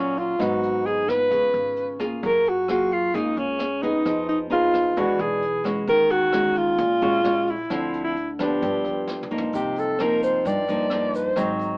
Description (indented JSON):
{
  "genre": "bossa nova",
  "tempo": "131 BPM",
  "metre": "4/4",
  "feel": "straight",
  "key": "unclear",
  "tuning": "A4 = 440 Hz",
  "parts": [
    { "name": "mellow alto saxophone", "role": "melody", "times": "0.0-11.6 s", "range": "Db4 to D5", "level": "-21 LUFS", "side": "equal", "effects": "none" },
    { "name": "nylon-string guitar", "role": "accompaniment", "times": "0.0-11.8 s", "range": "G2 to Ab4", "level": "-25 LUFS", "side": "equal", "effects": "none" },
    { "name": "upright bass", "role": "bass", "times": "0.0-11.8 s", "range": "G1 to G2", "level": "-38 LUFS", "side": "equal", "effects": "none" },
    { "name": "jazz brush drum kit", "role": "drums", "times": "0.2-11.7 s", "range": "hi-hat, kick drum, rim click, snare drum, toms", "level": "-37 LUFS", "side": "equal", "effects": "none" },
    { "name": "egg shaker", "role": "percussion", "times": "9.5-11.8 s", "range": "none", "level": "-52 LUFS", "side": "right 1 dB", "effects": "none" }
  ],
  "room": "light reverb",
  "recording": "band playing live in one room, AM radio sound",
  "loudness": "-20 LUFS",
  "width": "side -30 dB against mid",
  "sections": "0.0-11.8 A section",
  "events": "drum fill 9.1-9.5",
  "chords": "0.4 Abm7; 1.3 Db6; 2.2 Gbmaj9; 4.0 Fm7b5; 5.0 E9; 5.9 Ebm11; 7.7 Dm9; 8.6 G7; 9.5 Cm11"
}